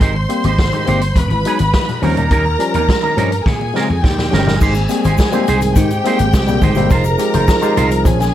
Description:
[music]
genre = disco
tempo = 104 BPM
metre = 4/4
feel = straight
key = Ab major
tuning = A4 = 440 Hz
[part]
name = clear studio string section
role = second line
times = 0.0-8.3 s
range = G4 to C6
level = -20 LUFS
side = equal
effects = none
[part]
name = barky tine electric piano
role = accompaniment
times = 0.0-8.2 s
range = Ab2 to G4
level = -20 LUFS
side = left 3 dB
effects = overdrive, wide subtle chorus
[part]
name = electric guitar with an envelope filter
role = accompaniment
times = 0.0-8.2 s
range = G3 to C5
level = -22 LUFS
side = right 6 dB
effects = none
[part]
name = vintage slap bass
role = bass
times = 0.0-8.3 s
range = E1 to Bb2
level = -17 LUFS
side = equal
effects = none
[part]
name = vintage drum kit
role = drums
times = 0.0-8.3 s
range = crash cymbal, hi-hat, kick drum, snare drum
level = -17 LUFS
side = equal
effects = gated reverb
[part]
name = congas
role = percussion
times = 0.0-8.3 s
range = none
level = -24 LUFS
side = left 5 dB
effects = none
[part]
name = dark French horn section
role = sustained chords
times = 4.6-8.3 s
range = F3 to Ab4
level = -22 LUFS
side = right 3 dB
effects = none
[part]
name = egg shaker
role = percussion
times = 4.6-8.3 s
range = none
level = -36 LUFS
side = left 16 dB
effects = none
[sound]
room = light reverb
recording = none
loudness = -12 LUFS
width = side -12 dB against mid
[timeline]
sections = 0.0-4.6 A section; 4.6-8.3 B section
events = drum fill 3.5-4.6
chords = 0.0 Abmaj7; 1.2 Emaj7; 2.0 Eb7; 3.5 Bbm7; 4.0 Eb7; 4.6 Abmaj7; 6.9 Fm7

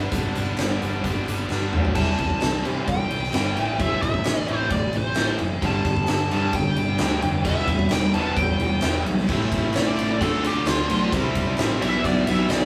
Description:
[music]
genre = classic rock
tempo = 131 BPM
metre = 4/4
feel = straight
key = A minor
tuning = A4 = 440 Hz
[part]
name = overdriven electric guitar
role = riff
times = 0.0-12.7 s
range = G2 to F4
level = -29 LUFS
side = equal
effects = none
[part]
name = fuzz fingered electric bass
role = bass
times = 0.0-12.7 s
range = E1 to C3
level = -29 LUFS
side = equal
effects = overdrive
[part]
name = huge arena drum kit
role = drums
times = 0.1-12.6 s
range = crash cymbal, hi-hat, kick drum, ride cymbal, snare drum, toms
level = -28 LUFS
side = equal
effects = none
[part]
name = group handclap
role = percussion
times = 0.6-12.6 s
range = none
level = barely audible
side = none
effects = none
[part]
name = fuzz lead guitar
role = melody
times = 1.9-12.7 s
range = F4 to A5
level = -29 LUFS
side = equal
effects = wah, distortion
[part]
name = overdriven electric guitar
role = riff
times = 5.6-12.7 s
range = E2 to D4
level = -31 LUFS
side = equal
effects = none
[sound]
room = moderate stone room reverb, RT60 1.1 s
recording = band playing live in one room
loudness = -23 LUFS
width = mono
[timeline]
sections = 0.0-2.0 A section; 2.0-9.3 B section; 9.3-12.7 C section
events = drum fill 1.5-2.0; lead electric guitar solo 9.3-12.7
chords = 0.0 G; 2.0 C; 3.6 Am; 5.6 G5; 7.5 Em; 9.3 Am; 10.2 Dm; 11.1 C; 11.8 Em/B

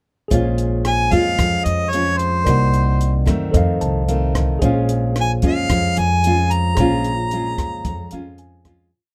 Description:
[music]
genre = bossa nova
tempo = 112 BPM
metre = 4/4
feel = straight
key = Bb minor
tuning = A4 = 442 Hz
[part]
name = nylon-string guitar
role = accompaniment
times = 0.3-8.9 s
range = F2 to Gb4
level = -24 LUFS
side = equal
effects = none
[part]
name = tine electric piano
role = accompaniment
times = 0.3-8.9 s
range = Ab4 to A5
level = -30 LUFS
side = equal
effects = none
[part]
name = upright bass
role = bass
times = 0.3-8.9 s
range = Bb1 to Gb2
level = -22 LUFS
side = equal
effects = none
[part]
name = compact cocktail drum kit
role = drums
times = 0.3-8.8 s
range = hi-hat, kick drum, rim click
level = -26 LUFS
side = equal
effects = none
[part]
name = warm harmonica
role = melody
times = 0.9-8.4 s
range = C5 to Bb5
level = -23 LUFS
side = equal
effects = none
[sound]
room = little or no reverb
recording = close, detailed microphones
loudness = -18 LUFS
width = mono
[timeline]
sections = 0.3-8.9 A section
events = tine electric piano fill 3.5-4.6, 7.8-8.9; fade-out 6.8-8.9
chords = 0.3 Bbm7; 2.5 Cm7b5; 3.5 F7; 4.6 Bbm7

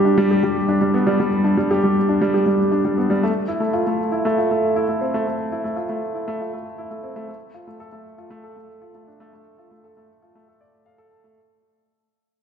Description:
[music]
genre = electronica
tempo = 118 BPM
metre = 4/4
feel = straight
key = unclear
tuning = A4 = 441 Hz
[part]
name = dark upright piano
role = riff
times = 0.0-11.4 s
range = G3 to A5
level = -18 LUFS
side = equal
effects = digital delay
[sound]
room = wet concert hall reverb, RT60 2.2 s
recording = none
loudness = -18 LUFS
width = side -7 dB against mid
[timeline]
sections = 0.0-11.4 A section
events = fade-out 0.0-11.4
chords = none

